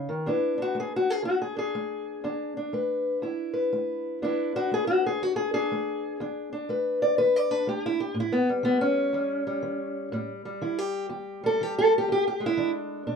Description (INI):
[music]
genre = acoustic country blues, solo or duo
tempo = 122 BPM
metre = 4/4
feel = swing 65% on 8ths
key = E mixolydian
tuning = A4 = 444 Hz
[part]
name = fingerpicked steel-string acoustic guitar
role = solo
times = 0.0-13.2 s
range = E2 to D5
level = -25 LUFS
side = equal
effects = none
[sound]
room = moderate booth ambience, RT60 0.3 s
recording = minimal, uncompressed stereo recording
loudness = -25 LUFS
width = side -6 dB against mid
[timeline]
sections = 0.3-13.2 A section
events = steel-string acoustic guitar solo 0.3-13.2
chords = 0.3 E7; 8.1 A5; 12.1 E7